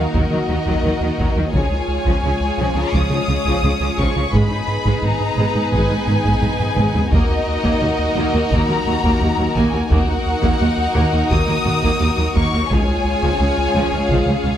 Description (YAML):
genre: cinematic, hybrid orchestral and electronic film score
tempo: 86 BPM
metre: 4/4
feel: straight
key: Eb minor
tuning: A4 = 442 Hz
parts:
  - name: warm symphonic violin section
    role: melody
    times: 0.0-14.6 s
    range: Eb5 to Eb6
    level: -24 LUFS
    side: left 3 dB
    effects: none
  - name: rich studio violin section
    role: second line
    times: 0.0-14.6 s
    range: Gb4 to Db5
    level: -24 LUFS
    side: left 2 dB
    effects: none
  - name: rich symphonic viola section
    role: accompaniment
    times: 0.0-14.6 s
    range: Db3 to F4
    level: -25 LUFS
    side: equal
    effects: none
  - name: analog string pad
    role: sustained chords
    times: 0.0-14.6 s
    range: Ab3 to F5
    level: -26 LUFS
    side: equal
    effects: ensemble chorus
  - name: rubbery square bass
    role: riff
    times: 0.0-14.5 s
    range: Db2 to Ab3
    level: -22 LUFS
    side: right 1 dB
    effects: none
  - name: rich symphonic cello section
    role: bass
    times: 0.0-14.5 s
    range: Db2 to Eb3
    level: -23 LUFS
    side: right 1 dB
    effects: none
  - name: warm symphonic double bass section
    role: bass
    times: 0.1-14.5 s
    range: Ab1 to Eb2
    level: -23 LUFS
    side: right 2 dB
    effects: none
  - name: taiko ensemble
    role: drums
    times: 0.1-14.6 s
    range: none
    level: -24 LUFS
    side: equal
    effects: none
room: light reverb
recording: none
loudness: -15 LUFS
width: side -10 dB against mid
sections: 0.0-14.6 A section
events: drum fill 6.4-7.1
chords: 0.0 Ebm; 1.5 Db; 4.3 Abm; 7.1 Ebm; 12.7 Db